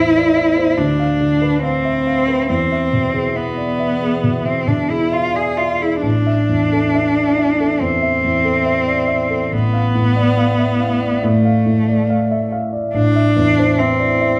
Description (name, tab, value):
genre	classical, romantic duo for cello and grand piano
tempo	69 BPM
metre	4/4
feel	uneven beats, rubato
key	A minor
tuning	A4 = 441 Hz
part	clear cello	melody	0.0-14.4 s	A3 to G#4	-19 LUFS	equal	none
part	warm baby grand piano	accompaniment	0.0-14.4 s	A1 to F5	-20 LUFS	equal	none
room	moderate recital hall reverb, RT60 1.7 s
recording	none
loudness	-16 LUFS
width	mono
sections	0.0-14.4 A section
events	none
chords	0.0 Am; 0.8 Bdim/D; 2.5 E; 6.0 Am; 9.5 Dm/A; 13.0 Am